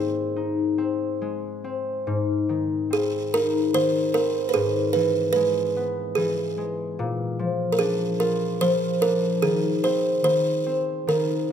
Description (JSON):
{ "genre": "children's music, lullaby", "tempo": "74 BPM", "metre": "3/4", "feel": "uneven beats, rubato", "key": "Ab major pentatonic", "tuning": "A4 = 441 Hz", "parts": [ { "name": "buzzing kalimba", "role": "melody", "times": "0.0-11.5 s", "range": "Ab4 to C5", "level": "-23 LUFS", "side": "right 3 dB", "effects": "none" }, { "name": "concert harp", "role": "accompaniment", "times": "0.0-11.5 s", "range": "Ab2 to F4", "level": "-25 LUFS", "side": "left 4 dB", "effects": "none" } ], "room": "light reverb", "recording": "none", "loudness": "-21 LUFS", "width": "side -8 dB against mid", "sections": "0.0-2.1 A section; 2.1-11.5 B section", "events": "none", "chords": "0.0 Ab; 4.6 E/G#; 7.0 Bb; 9.4 Ab/Eb", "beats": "0.36 1.22 | 2.08 2.92 3.75 | 4.55 5.35 6.17 | 6.97 7.79 8.60 | 9.42 10.24 11.08" }